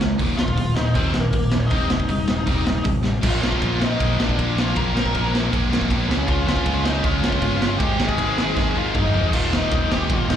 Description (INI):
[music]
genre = punk rock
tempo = 158 BPM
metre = 4/4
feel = straight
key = unclear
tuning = A4 = 444 Hz
[part]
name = biting overdriven guitar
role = riff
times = 0.0-10.4 s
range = Eb2 to Db4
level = -25 LUFS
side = left 8 dB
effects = slapback echo
[part]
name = biting overdriven guitar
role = riff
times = 0.0-10.4 s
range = Eb2 to Db4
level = -27 LUFS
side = right 9 dB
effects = slapback echo
[part]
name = growling picked electric bass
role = bass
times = 0.0-10.4 s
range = Eb1 to Db2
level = -25 LUFS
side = equal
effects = overdrive
[part]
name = raw garage drum kit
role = drums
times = 0.0-10.4 s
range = crash cymbal, hi-hat, kick drum, ride cymbal, snare drum, toms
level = -23 LUFS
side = equal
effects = none
[part]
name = bluesy overdriven lead guitar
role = melody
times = 0.4-10.4 s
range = Bb3 to Bb5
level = -26 LUFS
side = left 1 dB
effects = distortion, slapback echo
[part]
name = biting overdriven guitar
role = riff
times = 3.2-10.4 s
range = Eb2 to Ab4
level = -29 LUFS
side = right 1 dB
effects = slapback echo
[sound]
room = little or no reverb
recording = live gig heard through the venue's PA, club reverb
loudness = -18 LUFS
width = side -9 dB against mid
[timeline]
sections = 0.0-3.2 A section; 3.2-9.3 B section; 9.3-10.4 C section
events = drum fill 3.0, 8.6-9.3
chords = 0.2 Eb5; 1.7 Cm/Eb; 3.2 Bb; 6.1 Db; 7.8 Ab; 9.3 Eb